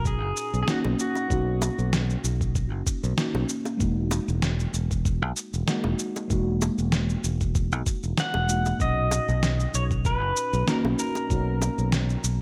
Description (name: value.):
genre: sunset chillout.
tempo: 96 BPM.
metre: 4/4.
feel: swing 54% on 16ths.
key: B major.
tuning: A4 = 440 Hz.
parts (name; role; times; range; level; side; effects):
pedal steel guitar; melody; 0.0-1.9, 8.2-11.9 s; F#4 to F#5; -32 LUFS; equal; digital delay.
mellow FM electric piano; accompaniment; 0.0-12.4 s; A#2 to F#4; -33 LUFS; equal; chorus, phaser, low-pass filter, digital delay.
fingered electric bass; bass; 0.0-12.4 s; E1 to B1; -28 LUFS; equal; none.
electronic kick drum; drums; 0.1-11.4 s; none; -29 LUFS; equal; overdrive.
electronic shaker and snare drum; drums; 0.1-12.4 s; none; -31 LUFS; equal; overdrive, gated reverb.
bongos; percussion; 0.8-11.8 s; none; -36 LUFS; equal; none.
room: light reverb.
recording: bright 1980s-style digital production.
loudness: -26 LUFS.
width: mono.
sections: 0.0-12.4 A section.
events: none.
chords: 0.0 Bmaj9; 3.8 Emaj9#11; 8.8 Bmaj9.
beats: 0.05 0.68 | 1.30 1.93 2.55 3.18 | 3.80 4.43 5.05 5.68 | 6.30 6.93 7.55 8.18 | 8.80 9.43 10.05 10.68 | 11.30 11.93.